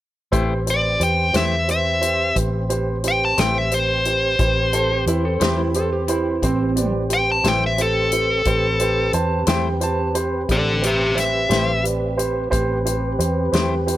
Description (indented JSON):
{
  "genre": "slow blues",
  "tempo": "59 BPM (dotted quarters)",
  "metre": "12/8",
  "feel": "straight",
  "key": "A minor",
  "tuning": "A4 = 443 Hz",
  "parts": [
    { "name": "clean electric guitar", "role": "accompaniment", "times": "0.3-13.7 s", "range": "A3 to C5", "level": "-27 LUFS", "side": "left 4 dB", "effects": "harmonic tremolo" },
    { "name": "dark baby grand piano", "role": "accompaniment", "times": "0.3-14.0 s", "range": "G4 to D5", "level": "-25 LUFS", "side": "right 4 dB", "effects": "none" },
    { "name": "tonewheel organ", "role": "sustained chords", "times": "0.3-14.0 s", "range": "C4 to C5", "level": "-28 LUFS", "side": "equal", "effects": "slow rotary speaker" },
    { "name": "vintage muted fingered electric bass", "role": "bass", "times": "0.3-14.0 s", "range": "A1 to E2", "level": "-24 LUFS", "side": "equal", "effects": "none" },
    { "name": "natural country drum kit", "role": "drums", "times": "0.3-14.0 s", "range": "hi-hat, kick drum, snare drum", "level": "-25 LUFS", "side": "left 1 dB", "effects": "none" },
    { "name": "dark smooth lead guitar", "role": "melody", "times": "0.7-11.8 s", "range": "G4 to A5", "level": "-20 LUFS", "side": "left 1 dB", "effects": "overdrive" },
    { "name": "electric slide guitar", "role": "second line", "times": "4.7-10.2 s", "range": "C4 to A5", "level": "-25 LUFS", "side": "right 3 dB", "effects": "none" }
  ],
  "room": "light reverb, small room ambience",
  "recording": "none",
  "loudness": "-17 LUFS",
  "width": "side -14 dB against mid",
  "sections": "0.3-14.0 A section",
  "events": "none",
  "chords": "0.3 Am7"
}